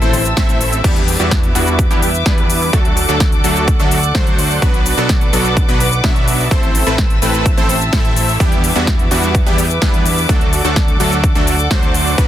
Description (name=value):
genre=EDM, festival progressive house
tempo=127 BPM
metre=4/4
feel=straight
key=E minor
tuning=A4 = 441 Hz
part: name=dark concert grand piano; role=accompaniment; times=0.0-0.6 s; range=A2 to E4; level=-26 LUFS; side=left 6 dB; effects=sidechain pumping, dub echo
part: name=dark studio string section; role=sustained chords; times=0.0-12.3 s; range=C4 to E6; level=-22 LUFS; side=right 1 dB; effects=sidechain pumping
part: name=supersaw stab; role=riff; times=0.0-12.3 s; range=F#3 to E5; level=-18 LUFS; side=equal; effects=sidechain pumping, dub echo
part: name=fat analog bass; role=bass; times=0.0-12.3 s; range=A1 to E2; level=-20 LUFS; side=equal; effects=sidechain pumping
part: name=big-room dance drum kit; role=drums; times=0.0-12.3 s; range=crash cymbal, hi-hat, shaker, snare drum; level=-21 LUFS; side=left 1 dB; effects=overdrive
part: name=electronic kick drum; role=drums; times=0.4-12.3 s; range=none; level=-15 LUFS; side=equal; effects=overdrive
room=little or no reverb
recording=dense, heavily limited modern master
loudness=-11 LUFS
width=side -12 dB against mid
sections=0.8-12.3 A section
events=band accent 0.4; drop 0.8-12.3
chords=0.0 Am; 0.8 Em7; 2.7 D; 4.6 Bm; 6.5 Am; 8.4 Em7; 10.3 D